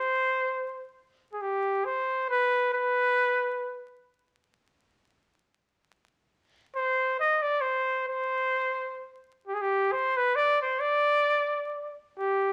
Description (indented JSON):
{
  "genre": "mexican folk",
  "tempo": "free time",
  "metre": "none",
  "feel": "none",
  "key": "C harmonic minor",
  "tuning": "A4 = 440 Hz",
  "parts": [
    { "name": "mellow trumpet", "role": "solo", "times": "0.0-3.8, 6.8-12.5 s", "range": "G4 to Eb5", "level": "-27 LUFS", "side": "equal", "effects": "none" }
  ],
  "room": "moderate large studio reverb, RT60 1.0 s",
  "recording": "vinyl crackle",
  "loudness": "-27 LUFS",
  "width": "mono",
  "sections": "0.0-1.4 A section; 1.4-12.5 B section",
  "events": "none",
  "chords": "none",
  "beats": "free time"
}